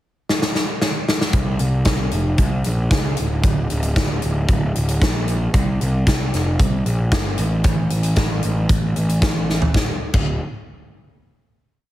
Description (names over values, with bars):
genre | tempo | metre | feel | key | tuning
quiet-loud alternative rock | 114 BPM | 4/4 | straight | unclear | A4 = 437 Hz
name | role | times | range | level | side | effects
big rock drum kit | drums | 0.3-10.3 s | crash cymbal, hi-hat, kick drum, snare drum, toms | -19 LUFS | equal | none
fuzz picked electric bass | bass | 1.3-10.4 s | D1 to C#2 | -20 LUFS | equal | overdrive
room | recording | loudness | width
little or no reverb | heavily compressed radio sound, multiband compression | -17 LUFS | side -14 dB against mid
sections
0.0-1.3 pickup bar; 1.3-9.8 pre-chorus; 9.8-11.8 final note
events
drum fill 0.3-1.3, 9.5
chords
none